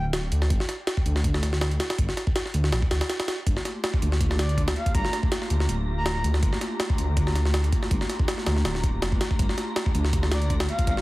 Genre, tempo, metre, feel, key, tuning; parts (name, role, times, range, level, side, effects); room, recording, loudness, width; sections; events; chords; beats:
drum and bass, jungle; 162 BPM; 4/4; swing 54% on 16ths; G minor; A4 = 438 Hz
breathy flute-like synth lead; melody; 0.0, 4.4-6.2, 10.3-11.0 s; D5 to Bb5; -34 LUFS; equal; chorus, dub echo
dark detuned saw bass; bass; 0.0-11.0 s; D1 to D2; -25 LUFS; equal
jungle sampler-style drum kit; drums; 0.1-11.0 s; hi-hat, kick drum, snare drum; -25 LUFS; equal; studio ambience
airy breathy pad; sustained chords; 3.5-11.0 s; A3 to G4; -34 LUFS; equal; chorus, vintage 12-bit sampler grit
wind-like tuned noise texture; texture; 4.3-11.0 s; Bb5; -40 LUFS; left 2 dB; built-in reverb
digital ambience; dense, heavily limited modern master, vinyl crackle; -22 LUFS; side -19 dB against mid
0.0-11.0 A section
0.0 Gm9
0.13 | 0.50 0.87 1.24 1.61 | 1.99 2.35 2.73 3.10 | 3.47 3.84 4.21 4.58 | 4.95 5.32 5.69 6.06 | 6.43 6.80 7.17 7.54 | 7.91 8.28 8.65 9.02 | 9.39 9.76 10.13 10.50 | 10.87